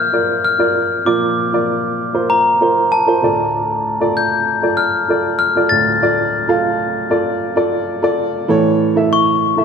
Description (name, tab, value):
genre	pop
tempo	97 BPM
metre	4/4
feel	straight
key	D minor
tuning	A4 = 440 Hz
part	glockenspiel with soft plastic mallets	melody	0.0-9.6 s	A5 to A6	-16 LUFS	left 3 dB	none
part	dark upright piano	accompaniment	0.0-9.6 s	D2 to F5	-16 LUFS	right 2 dB	none
room	moderate scoring stage reverb, RT60 1.9 s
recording	none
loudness	-13 LUFS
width	side -6 dB against mid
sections	0.0-9.6 A section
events	none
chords	0.0 Bb; 3.2 Dm; 8.5 A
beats	0.45 | 1.06 1.68 2.30 2.92 | 3.54 4.16 4.78 5.39 | 6.01 6.63 7.25 7.87 | 8.49 9.11